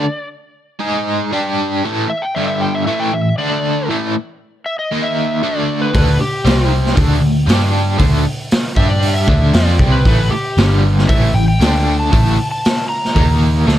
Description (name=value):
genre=blues rock power trio and southern rock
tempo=117 BPM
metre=4/4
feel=straight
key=unclear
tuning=A4 = 440 Hz
part: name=overdriven slide guitar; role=melody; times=0.0-13.4 s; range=G4 to Bb5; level=-21 LUFS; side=left 1 dB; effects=none
part: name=crunchy overdriven guitar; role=riff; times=0.0-13.8 s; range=G2 to G#4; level=-17 LUFS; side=equal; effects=tremolo
part: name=vintage muted picked electric bass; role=bass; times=5.9-13.8 s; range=G1 to G2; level=-14 LUFS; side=equal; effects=none
part: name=raw garage drum kit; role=drums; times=5.9-13.8 s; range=hi-hat, kick drum, snare drum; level=-16 LUFS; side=equal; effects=none
room=studio reverb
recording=none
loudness=-13 LUFS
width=side -12 dB against mid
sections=0.0-13.8 A section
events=none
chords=0.0 D5; 0.8 G#5; 1.3 G5; 1.8 A5; 2.4 G5; 2.9 A5; 3.4 D5; 3.9 A5; 4.9 D#5; 5.4 D5; 6.5 C5; 7.0 D5; 7.5 G5; 8.0 D5; 8.8 G5; 9.3 D5; 10.1 A5; 10.6 G5; 11.1 A5; 11.6 D5; 12.1 A5; 13.2 D#5